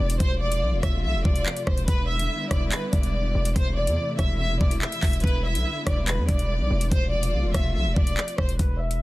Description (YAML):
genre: hip hop, drill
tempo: 143 BPM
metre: 4/4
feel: half-time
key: unclear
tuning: A4 = 441 Hz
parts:
  - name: warm studio violin section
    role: melody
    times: 0.0-9.0 s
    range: B4 to E5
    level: -29 LUFS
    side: equal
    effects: low-pass filter
  - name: warm symphonic string section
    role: sustained chords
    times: 0.0-8.6 s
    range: C3 to F4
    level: -33 LUFS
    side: left 1 dB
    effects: none
  - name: hard-hitting 808-style bass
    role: bass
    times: 0.0-9.0 s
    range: E1 to E2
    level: -26 LUFS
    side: equal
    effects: none
  - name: drill drum kit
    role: drums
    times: 0.1-9.0 s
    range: handclaps, hi-hat, kick drum, rim click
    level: -24 LUFS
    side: equal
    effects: none
room: small room ambience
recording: dense, heavily limited modern master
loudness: -22 LUFS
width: side -18 dB against mid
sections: 0.0-8.6 A section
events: none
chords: 0.2 F/E; 1.9 Em7; 3.6 Am/E; 5.2 Em7; 6.9 F/E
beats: | 0.20 0.62 1.04 1.46 | 1.88 2.30 2.72 3.14 | 3.56 3.98 4.40 4.82 | 5.24 5.66 6.08 6.50 | 6.92 7.33 7.75 8.17 | 8.59 9.01